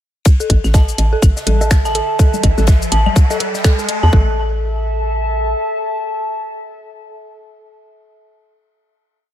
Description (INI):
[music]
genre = minimal techno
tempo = 124 BPM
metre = 4/4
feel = swing 60% on 16ths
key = unclear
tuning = A4 = 436 Hz
[part]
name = big rock drum kit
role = drums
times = 0.3-4.0 s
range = ride cymbal, snare drum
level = -31 LUFS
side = left 4 dB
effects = sidechain pumping on cymbals, high-pass filter on cymbals, high-pass filter on snare, high-pass filter on room
[part]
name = electronic kick drum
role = drums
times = 0.3-4.2 s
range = none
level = -11 LUFS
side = equal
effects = none
[part]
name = garage drum kit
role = drums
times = 0.3-4.0 s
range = cabasa, finger snaps, hi-hat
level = -22 LUFS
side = left 1 dB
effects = none
[part]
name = riser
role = sound effects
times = 1.6-4.1 s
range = none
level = -27 LUFS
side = left 1 dB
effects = none
[part]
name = warbly tape-like pad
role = texture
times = 1.0-7.7 s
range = A4 to A5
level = -23 LUFS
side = equal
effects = chorus, built-in reverb, sidechain pumping
[part]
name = dark detuned synth bell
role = riff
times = 0.4-4.4 s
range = A4 to A5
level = -22 LUFS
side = left 1 dB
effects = chorus, sidechain pumping, low-pass filter, digital delay
[part]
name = hollow knocking FM bass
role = bass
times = 0.5-5.5 s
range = A1 to E2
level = -16 LUFS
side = equal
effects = sidechain pumping
[part]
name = bongos, claves and congas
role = percussion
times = 0.5-4.0 s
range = none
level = -26 LUFS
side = left 4 dB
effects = digital delay
[sound]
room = digital ambience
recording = none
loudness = -13 LUFS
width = side -12 dB against mid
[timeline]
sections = 0.3-4.1 build; 4.1-8.0 final chord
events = build-up 0.3-4.1; filter sweep on synth bell 0.3-4.1; riser 1.6-4.1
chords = 0.3 A5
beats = | 0.26 0.74 1.23 1.71 | 2.19 2.68 3.16 3.64 | 4.13 4.61 5.10 5.58 | 6.06 6.55 7.03 7.51